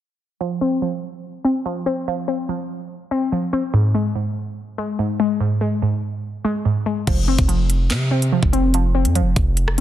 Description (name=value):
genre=hip hop, drill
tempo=144 BPM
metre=4/4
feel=half-time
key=F minor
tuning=A4 = 444 Hz
part: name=warbly dusty pluck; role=accompaniment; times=0.4-9.8 s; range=Ab2 to C4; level=-20 LUFS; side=equal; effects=chorus, phaser, low-pass filter
part: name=hard-hitting 808-style bass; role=bass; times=7.1-9.8 s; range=F1 to C3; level=-18 LUFS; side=equal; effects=none
part: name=drill drum kit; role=drums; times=7.1-9.8 s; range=crash cymbal, handclaps, hi-hat, kick drum, rim click, snare drum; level=-21 LUFS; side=equal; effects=none
room=light reverb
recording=dense, heavily limited modern master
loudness=-18 LUFS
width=side -12 dB against mid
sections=0.4-7.1 A section; 7.1-9.8 B section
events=filter sweep on synth pluck 0.4-7.1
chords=0.4 F5; 3.7 N.C.; 7.1 F5